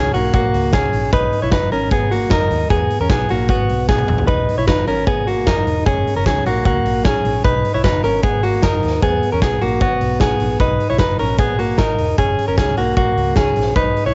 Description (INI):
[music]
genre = jangly indie pop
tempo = 152 BPM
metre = 4/4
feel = straight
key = B major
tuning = A4 = 440 Hz
[part]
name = direct-recorded clean electric guitar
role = arpeggios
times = 0.0-14.1 s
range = A#3 to C#5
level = -20 LUFS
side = equal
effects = cassette tape, plate reverb
[part]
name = vintage muted fingered electric bass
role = bass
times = 0.0-14.1 s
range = E1 to E2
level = -26 LUFS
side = equal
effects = none
[part]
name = big rock drum kit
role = drums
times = 0.1-14.1 s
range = hi-hat, kick drum, snare drum, toms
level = -21 LUFS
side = equal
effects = none
[sound]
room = moderate studio reverb, RT60 0.6 s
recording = home recording on cassette, nothing above 7.7 kHz, faint mains hum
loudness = -17 LUFS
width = mono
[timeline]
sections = 0.0-14.1 A section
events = drum fill 3.9-4.3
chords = 0.0 F#add9; 1.1 B; 2.7 Eadd9; 4.3 B; 5.9 F#add9; 7.4 B; 9.0 Eadd9; 10.6 B; 12.2 F#add9